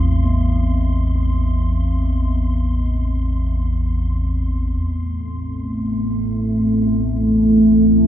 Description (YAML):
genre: dark ambient drone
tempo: free time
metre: none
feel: none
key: A minor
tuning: A4 = 440 Hz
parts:
  - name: bronze singing bowl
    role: arpeggios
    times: 0.0-5.7 s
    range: B3 to C4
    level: -27 LUFS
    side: left 1 dB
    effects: tape echo
  - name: deep rumbling drone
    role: drone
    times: 0.0-8.1 s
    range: A1 to E2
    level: -19 LUFS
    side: equal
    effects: built-in reverb
  - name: wind-like tuned noise texture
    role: texture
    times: 0.0-4.8 s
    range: C6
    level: -39 LUFS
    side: right 3 dB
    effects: built-in reverb
  - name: deep dark ambient pad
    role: sustained chords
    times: 5.6-8.1 s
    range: A3 to A4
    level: -15 LUFS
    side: equal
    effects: chorus, built-in reverb
room: wet huge ambient reverb, RT60 8.8 s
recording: none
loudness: -16 LUFS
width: side -10 dB against mid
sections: 0.0-4.8 A section; 4.8-8.1 B section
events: fade-out on synth texture 0.0-4.8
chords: 0.0 Amadd9; 4.8 Asus2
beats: free time